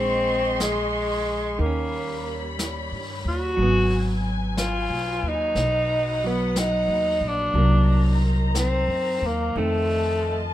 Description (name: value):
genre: jazz ballad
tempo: 60 BPM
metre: 4/4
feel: swing 68% on 8ths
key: unclear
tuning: A4 = 439 Hz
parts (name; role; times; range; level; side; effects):
- breathy tenor saxophone; melody; 0.0-10.5 s; Ab3 to Gb4; -24 LUFS; equal; none
- hollow-body jazz guitar; accompaniment; 0.0-10.5 s; Eb3 to Eb4; -29 LUFS; right 2 dB; none
- dark symphonic string section; sustained chords; 0.0-10.5 s; Eb3 to Db6; -32 LUFS; left 2 dB; none
- upright bass; bass; 0.0-10.5 s; Ab1 to G2; -25 LUFS; equal; none
- vintage brush drum kit; drums; 0.6-10.5 s; brushed snare drum, hi-hat, snare drum; -34 LUFS; left 1 dB; none
room: moderate large studio reverb, RT60 0.9 s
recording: minimal, uncompressed stereo recording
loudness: -21 LUFS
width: side -13 dB against mid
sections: 0.0-10.5 A section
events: none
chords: 0.0 Bbm11; 1.6 Eb7b13; 3.6 Abm7; 7.5 Cm7b5; 9.6 F7